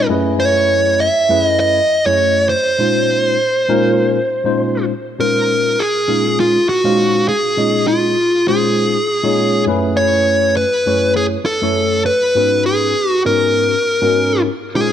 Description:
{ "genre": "jazz", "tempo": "100 BPM", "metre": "4/4", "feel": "swing 55% on 16ths", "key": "Bb minor", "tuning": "A4 = 440 Hz", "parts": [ { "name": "dark smooth lead guitar", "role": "melody", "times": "0.0-14.9 s", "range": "F4 to Fb5", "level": "-14 LUFS", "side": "equal", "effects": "overdrive" }, { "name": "tine electric piano", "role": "accompaniment", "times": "0.0-14.9 s", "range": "Gb2 to F5", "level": "-18 LUFS", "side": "left 1 dB", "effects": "medium stereo tremolo, lush chorus" } ], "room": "moderate echo chamber reverb, RT60 2.0 s", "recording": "dark, warm production", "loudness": "-13 LUFS", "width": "side -9 dB against mid", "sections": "0.0-5.2 A section; 5.2-14.9 A section", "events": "none", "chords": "0.1 Gbm11; 2.8 Bbm11; 9.7 Gbm11; 12.4 Abm11" }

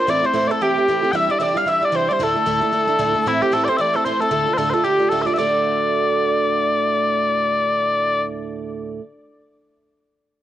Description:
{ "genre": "celtic folk, Celtic reel", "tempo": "227 BPM", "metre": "4/4", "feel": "swing 57% on 8ths", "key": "unclear", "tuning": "A4 = 440 Hz", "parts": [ { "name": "mellow small bagpipes", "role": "melody", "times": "0.0-8.3 s", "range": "E4 to G5", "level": "-18 LUFS", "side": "left 3 dB", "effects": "none" }, { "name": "mandolin", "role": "second line", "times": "0.0-9.0 s", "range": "E4 to F5", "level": "-25 LUFS", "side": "right 5 dB", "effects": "none" }, { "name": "picked plugged-in twelve-string acoustic guitar", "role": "accompaniment", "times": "0.0-9.0 s", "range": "D2 to F#4", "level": "-23 LUFS", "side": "right 5 dB", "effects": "none" } ], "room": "light reverb", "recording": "home recording on cassette", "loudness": "-16 LUFS", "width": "side -12 dB against mid", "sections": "0.0-5.4 A section; 5.4-7.5 B section", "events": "none", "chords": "0.1 Am; 1.1 Cadd9; 2.2 Dsus2; 3.3 Am; 4.3 Dm; 5.4 D" }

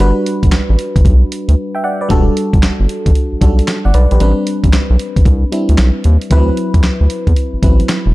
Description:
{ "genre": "R&B, new jack swing", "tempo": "114 BPM", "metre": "4/4", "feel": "swing 65% on 16ths", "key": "E minor", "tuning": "A4 = 439 Hz", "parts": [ { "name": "FM electric piano", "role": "accompaniment", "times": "0.0-8.1 s", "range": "E3 to G5", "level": "-17 LUFS", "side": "equal", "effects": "chorus" }, { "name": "round analog bass", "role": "bass", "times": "0.0-8.1 s", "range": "E1 to E2", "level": "-11 LUFS", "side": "equal", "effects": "none" }, { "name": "dusty soul sampler-style drum kit", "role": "drums", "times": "0.0-8.1 s", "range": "handclaps, hi-hat, kick drum, snare drum", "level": "-13 LUFS", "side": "equal", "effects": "none" } ], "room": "little or no reverb", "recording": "dark, warm production", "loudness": "-10 LUFS", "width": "side -19 dB against mid", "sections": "0.0-8.1 A section", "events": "break 1.6-2.1", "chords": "0.0 Gmaj7; 2.1 Em11; 4.2 Am11; 6.3 D13" }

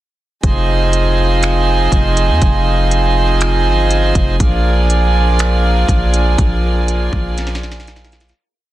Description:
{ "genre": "hip hop, atmospheric cloud-rap", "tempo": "121 BPM", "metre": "4/4", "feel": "half-time", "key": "F dorian", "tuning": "A4 = 440 Hz", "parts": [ { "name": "pedal harmonium", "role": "sustained chords", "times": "0.4-8.3 s", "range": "F3 to Ab4", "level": "-16 LUFS", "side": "right 2 dB", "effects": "sidechain pumping" }, { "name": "long sustained 808-style bass", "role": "bass", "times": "0.4-8.3 s", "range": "F1 to F2", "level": "-15 LUFS", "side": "equal", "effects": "none" }, { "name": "trap drum kit", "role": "drums", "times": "0.4-8.4 s", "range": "finger snaps, hi-hat, kick drum, snare drum", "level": "-17 LUFS", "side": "equal", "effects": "vintage 12-bit sampler grit" } ], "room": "little or no reverb", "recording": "dense, heavily limited modern master", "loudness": "-12 LUFS", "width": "side -14 dB against mid", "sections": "0.4-8.4 verse", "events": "fade-out 6.4-8.4; drum fill 7.4-8.4", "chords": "0.4 Fm7; 4.4 Bb7" }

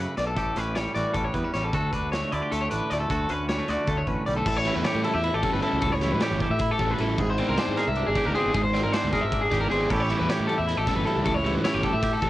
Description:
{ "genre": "math rock and midwest emo", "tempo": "309 BPM (eighths)", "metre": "7/8", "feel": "straight", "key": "unclear", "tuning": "A4 = 439 Hz", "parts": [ { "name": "twangy electric guitar", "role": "accompaniment", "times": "0.0-12.3 s", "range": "D2 to Bb4", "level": "-28 LUFS", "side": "right 3 dB", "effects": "none" }, { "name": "electric guitar through a small old amp", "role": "arpeggios", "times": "0.0-12.3 s", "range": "G#4 to E5", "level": "-27 LUFS", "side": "left 2 dB", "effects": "none" }, { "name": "fuzz fingered electric bass", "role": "bass", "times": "0.0-12.3 s", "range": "G1 to A2", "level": "-30 LUFS", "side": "equal", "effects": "overdrive" }, { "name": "loose indie drum kit", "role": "drums", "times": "0.2-12.3 s", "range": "crash cymbal, hi-hat, kick drum, ride cymbal, snare drum", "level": "-32 LUFS", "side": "equal", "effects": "cassette tape" }, { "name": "overdriven semi-hollow guitar", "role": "riff", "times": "4.7-12.3 s", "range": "E3 to D5", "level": "-30 LUFS", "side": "right 1 dB", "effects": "none" } ], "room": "light reverb", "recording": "home recording on cassette", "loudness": "-22 LUFS", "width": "side -15 dB against mid", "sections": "0.0-4.5 A section; 4.5-12.3 B section", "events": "none", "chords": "0.4 A7; 3.1 Dmaj7; 4.5 A9; 7.2 E7alt/G#; 9.9 A9" }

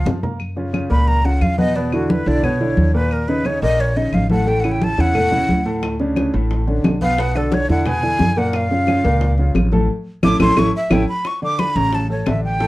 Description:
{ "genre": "Afro-Cuban jazz", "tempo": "177 BPM", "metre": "4/4", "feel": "straight", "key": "unclear", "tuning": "A4 = 442 Hz", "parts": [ { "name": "breathy jazz flute", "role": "melody", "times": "0.0-12.7 s", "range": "F#4 to D6", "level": "-21 LUFS", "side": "equal", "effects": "none" }, { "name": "warm baby grand piano", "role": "accompaniment", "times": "0.0-12.7 s", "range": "A2 to A#5", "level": "-21 LUFS", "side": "equal", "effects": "none" }, { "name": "upright bass", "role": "bass", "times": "0.0-12.7 s", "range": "A1 to F#2", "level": "-20 LUFS", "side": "equal", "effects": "none" }, { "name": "bongos", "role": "percussion", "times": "0.1-0.4, 5.8-12.7 s", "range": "none", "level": "-25 LUFS", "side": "left 2 dB", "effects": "none" }, { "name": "congas", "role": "percussion", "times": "0.1-12.7 s", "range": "none", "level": "-22 LUFS", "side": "equal", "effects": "none" }, { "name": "claves", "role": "percussion", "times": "0.4-12.4 s", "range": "none", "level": "-32 LUFS", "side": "left 4 dB", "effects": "none" } ], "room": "moderate studio reverb, RT60 0.5 s", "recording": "worn, warbling old tape, cassette tape, warbly pitch drift", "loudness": "-15 LUFS", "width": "side -18 dB against mid", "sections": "0.4-11.3 A section; 11.3-12.7 A section", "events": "drum fill 0.0-0.4; flute solo 0.4-12.7; band accent 9.9-11.3", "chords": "0.4 F#maj7; 1.8 E5; 3.1 D#5; 4.5 A6; 5.8 D5; 7.2 Bm; 7.9 E9; 8.5 F#maj7; 9.9 A; 11.3 D5" }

